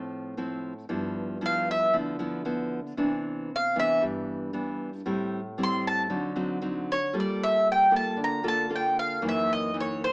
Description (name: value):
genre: bossa nova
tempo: 115 BPM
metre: 4/4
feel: straight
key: unclear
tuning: A4 = 436 Hz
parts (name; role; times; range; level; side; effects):
- nylon-string guitar; accompaniment; 0.0-10.1 s; F#2 to A4; -29 LUFS; equal; none
- mandolin; melody; 1.5-10.1 s; C5 to C6; -24 LUFS; equal; none
room: light reverb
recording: small speaker sound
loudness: -25 LUFS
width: side -27 dB against mid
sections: 0.0-10.1 A section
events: mandolin solo 0.0-10.1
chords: 0.0 Dm9 (rootless); 0.9 G6; 3.0 Cmaj9; 5.1 Am7; 6.1 D7b9; 7.1 Gm9; 9.2 F#6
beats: 0.37 | 0.89 1.41 1.93 2.46 | 2.98 3.50 4.02 4.54 | 5.06 5.58 6.10 6.62 | 7.14 7.66 8.18 8.70 | 9.22 9.74